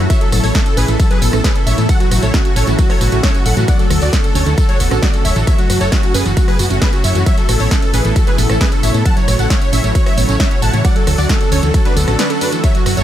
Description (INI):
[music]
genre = uplifting trance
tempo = 134 BPM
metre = 4/4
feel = straight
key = F# minor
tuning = A4 = 439 Hz
[part]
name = dense compressed supersaw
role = melody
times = 0.0-13.0 s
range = D4 to A5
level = -21 LUFS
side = equal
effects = cassette tape, sidechain pumping, ping-pong delay
[part]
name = plucky unison lead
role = second line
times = 0.0-13.0 s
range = F#4 to A5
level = -25 LUFS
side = equal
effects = cassette tape, sidechain pumping, dub echo
[part]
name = analog pluck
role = arpeggios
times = 0.0-12.9 s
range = F#2 to C#4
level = -23 LUFS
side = right 1 dB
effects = chorus, sidechain pumping, dub echo
[part]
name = solid FM bass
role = bass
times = 0.0-13.0 s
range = D1 to A2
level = -16 LUFS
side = equal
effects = sidechain pumping
[part]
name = electronic kick drum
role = drums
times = 0.1-12.7 s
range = none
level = -15 LUFS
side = equal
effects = none
[part]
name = punchy analog drum machine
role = drums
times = 0.1-13.0 s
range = hi-hat, ride cymbal, rim click, snare drum, tambourine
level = -21 LUFS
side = right 1 dB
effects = none
[sound]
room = little or no reverb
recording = none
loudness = -11 LUFS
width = side -11 dB against mid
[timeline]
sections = 0.0-13.0 A section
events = none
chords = 0.1 Asus2; 3.7 D; 5.5 F#m7; 7.3 Asus2; 10.8 D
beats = | 0.10 0.55 0.99 1.44 | 1.89 2.34 2.79 3.23 | 3.68 4.13 4.58 5.03 | 5.47 5.92 6.37 6.82 | 7.26 7.71 8.16 8.61 | 9.05 9.50 9.95 10.40 | 10.85 11.29 11.74 12.19 | 12.64